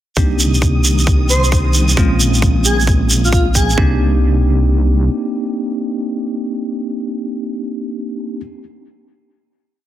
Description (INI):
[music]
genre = UK garage, two-step garage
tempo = 133 BPM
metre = 4/4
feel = swing 64% on 16ths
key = C minor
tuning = A4 = 440 Hz
[part]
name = soft string machine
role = sustained chords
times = 0.2-3.8 s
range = Eb3 to Eb6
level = -26 LUFS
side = left 1 dB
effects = ensemble chorus, vintage 12-bit sampler grit, sidechain pumping
[part]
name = bell-like tine electric piano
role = stabs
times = 0.2-8.4 s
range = Ab3 to G4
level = -20 LUFS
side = equal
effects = fast stereo tremolo, dub echo
[part]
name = deep soft wobble bass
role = bass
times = 0.2-5.1 s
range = Bb1 to C2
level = -15 LUFS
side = equal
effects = chorus
[part]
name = electronic kick drum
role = drums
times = 0.2-3.9 s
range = none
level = -15 LUFS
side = equal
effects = none
[part]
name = shekere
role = percussion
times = 0.2-3.8 s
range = none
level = -19 LUFS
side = right 3 dB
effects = none
[part]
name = airy dreamy lead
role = melody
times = 1.3-3.8 s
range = F4 to C5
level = -21 LUFS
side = equal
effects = chorus, phaser, dub echo
[sound]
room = digital ambience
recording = dense, heavily limited modern master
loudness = -13 LUFS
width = side -12 dB against mid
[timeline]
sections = 0.2-3.8 breakdown; 3.8-7.4 final chord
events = none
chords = 0.2 Cm9; 2.0 Bbm9; 3.8 Cm9